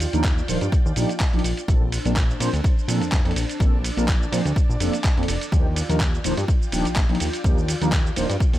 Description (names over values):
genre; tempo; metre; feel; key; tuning
filtered disco house; 125 BPM; 4/4; swing 54% on 16ths; unclear; A4 = 442 Hz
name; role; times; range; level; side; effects
string machine, full ensemble; sustained chords; 0.0-8.6 s; D4 to A5; -32 LUFS; equal; ensemble chorus, sidechain pumping
fat analog bass; bass; 0.0-8.6 s; Eb1 to Bb2; -24 LUFS; equal; tube saturation, sidechain pumping
dusty soul sampler-style drum kit; drums; 0.0-8.6 s; cabasa, handclaps, hi-hat, ride cymbal; -29 LUFS; right 1 dB; sidechain pumping on hats, sidechain pumping on perc, sidechain pumping on cymbals
mellow synth brass; accompaniment; 0.1-8.3 s; F3 to C5; -27 LUFS; equal; chorus, phaser, sidechain pumping
electronic kick drum; drums; 0.2-8.5 s; none; -20 LUFS; equal; none
room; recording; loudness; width
little or no reverb; none; -19 LUFS; side -14 dB against mid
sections
0.0-8.6 A section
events
none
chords
0.0 Ebmaj9; 1.7 Bbmaj9; 5.5 Ebmaj9